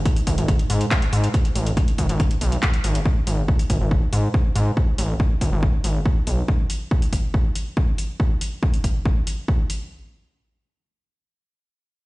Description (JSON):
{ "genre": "driving peak-time techno", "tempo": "140 BPM", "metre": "4/4", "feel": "straight", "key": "G# phrygian", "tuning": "A4 = 443 Hz", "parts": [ { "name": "deep dark ambient pad", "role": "drone", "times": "0.0-3.1 s", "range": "G#2", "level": "-33 LUFS", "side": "right 2 dB", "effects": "chorus, built-in reverb, sidechain pumping" }, { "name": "electronic kick drum", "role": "drums", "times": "0.1-9.6 s", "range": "none", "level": "-20 LUFS", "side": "equal", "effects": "overdrive" }, { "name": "techno drum kit", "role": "drums", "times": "0.1-9.8 s", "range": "handclaps, hi-hat", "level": "-30 LUFS", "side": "left 1 dB", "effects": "none" }, { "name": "gritty driven synth bass", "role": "bass", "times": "0.3-6.4 s", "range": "G#1 to G#2", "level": "-20 LUFS", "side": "equal", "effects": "sidechain pumping" } ], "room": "little or no reverb", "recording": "played on a big sound system in a bare room, stone room reverb, nothing above 11.0 kHz", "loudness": "-19 LUFS", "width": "side -21 dB against mid", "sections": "0.0-9.9 A section", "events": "none", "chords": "none" }